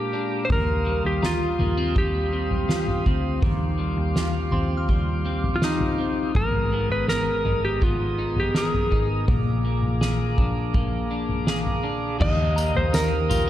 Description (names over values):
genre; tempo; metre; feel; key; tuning
dream pop; 82 BPM; 4/4; straight; Eb major; A4 = 441 Hz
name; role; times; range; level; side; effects
clean lap steel guitar; melody; 0.0-13.5 s; Eb4 to Eb5; -26 LUFS; equal; tape echo
mellow tonewheel organ; sustained chords; 0.0-13.5 s; Ab3 to Eb6; -31 LUFS; right 1 dB; slow rotary speaker
electric guitar at the edge of break-up; arpeggios; 0.0-13.5 s; Ab2 to Bb4; -29 LUFS; left 2 dB; wide subtle chorus, tape echo
vintage muted picked electric bass; bass; 0.5-13.5 s; Ab1 to Eb2; -27 LUFS; equal; none
soft-mallet drum kit; drums; 0.5-13.5 s; crash cymbal, kick drum, snare drum, tambourine, toms; -25 LUFS; equal; none
soft synth bell; texture; 1.2-6.9, 12.6-13.5 s; Bb5 to F6; -39 LUFS; right 1 dB; chorus, tape echo
room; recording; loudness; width
light reverb, small room ambience; dark, warm production; -21 LUFS; side -12 dB against mid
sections
0.0-12.2 A section; 12.2-13.5 B section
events
none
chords
0.0 Bb7; 0.5 Eb69; 6.4 Abmadd9; 9.3 Bb7; 12.2 Ebadd9